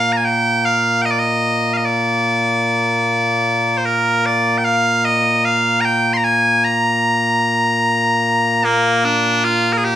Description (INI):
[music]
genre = scottish traditional, Scottish pipe music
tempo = 75 BPM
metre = 3/4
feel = straight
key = Bb mixolydian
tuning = A4 = 439 Hz
[part]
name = loud bright bagpipes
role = solo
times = 0.0-10.0 s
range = Bb2 to C6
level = -14 LUFS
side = equal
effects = none
[sound]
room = moderate large studio reverb, RT60 1.0 s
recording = band playing live in one room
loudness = -14 LUFS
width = side -12 dB against mid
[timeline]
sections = 0.0-9.4 A section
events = none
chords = none